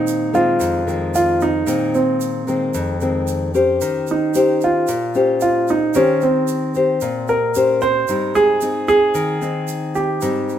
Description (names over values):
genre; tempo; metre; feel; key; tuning
bossa nova; 112 BPM; 4/4; straight; unclear; A4 = 439 Hz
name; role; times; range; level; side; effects
dark grand piano; melody; 0.0-10.6 s; C4 to C5; -18 LUFS; right 2 dB; none
nylon-string guitar; accompaniment; 0.0-10.6 s; F2 to C5; -19 LUFS; left 3 dB; none
tube shaker; percussion; 0.1-10.6 s; none; -35 LUFS; right 8 dB; none
room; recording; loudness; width
moderate stone room reverb, RT60 1.3 s; band playing live in one room; -15 LUFS; side -10 dB against mid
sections
0.0-10.6 A section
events
none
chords
0.0 Bb9sus4; 3.8 Eb13; 8.1 Abmaj7